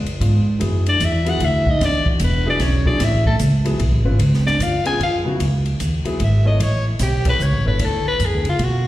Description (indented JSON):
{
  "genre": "jazz, small-group swing and bop",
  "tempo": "150 BPM",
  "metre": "3/4",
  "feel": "swing 64% on 8ths",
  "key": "C# minor from 5.4 s",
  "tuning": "A4 = 440 Hz",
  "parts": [
    { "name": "warm concert grand piano", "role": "accompaniment", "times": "0.0-8.9 s", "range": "C#3 to C#5", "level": "-26 LUFS", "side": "left 2 dB", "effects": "slapback echo" },
    { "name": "upright bass", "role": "bass", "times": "0.0-8.9 s", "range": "E1 to B2", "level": "-18 LUFS", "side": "equal", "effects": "none" },
    { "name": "open jazz drum kit", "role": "drums", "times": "0.1-8.7 s", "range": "hi-hat, kick drum, ride cymbal, snare drum", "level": "-25 LUFS", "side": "equal", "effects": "none" },
    { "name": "growling soprano saxophone", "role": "melody", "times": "0.9-8.9 s", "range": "E4 to G#5", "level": "-21 LUFS", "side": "left 2 dB", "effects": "slapback echo" },
    { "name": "breathy trombone", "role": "second line", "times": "0.9-5.3 s", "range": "F#3 to G#4", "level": "-26 LUFS", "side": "right 2 dB", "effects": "slapback echo" }
  ],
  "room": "light reverb",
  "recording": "live gig heard through the venue's PA, recital hall reverb",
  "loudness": "-16 LUFS",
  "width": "side -15 dB against mid",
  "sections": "0.0-5.4 A section; 5.4-8.9 B section",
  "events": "none",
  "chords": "0.0 C#7b9 (rootless); 0.6 F#9sus4; 1.8 E; 3.0 Amaj7; 4.2 C#7; 5.4 C#m9; 6.6 A9; 7.8 Dmaj9"
}